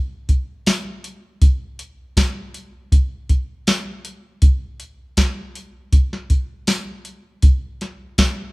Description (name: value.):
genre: blues.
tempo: 80 BPM.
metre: 4/4.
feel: straight.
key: none.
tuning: none.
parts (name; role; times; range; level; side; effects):
soft vintage rhythm box; drums; 0.3-8.4 s; hi-hat, kick drum, snare drum, tambourine; -15 LUFS; equal; none.
room: light reverb.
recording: band playing live in one room.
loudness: -17 LUFS.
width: side -23 dB against mid.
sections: 0.0-8.5 A section.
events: none.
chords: none.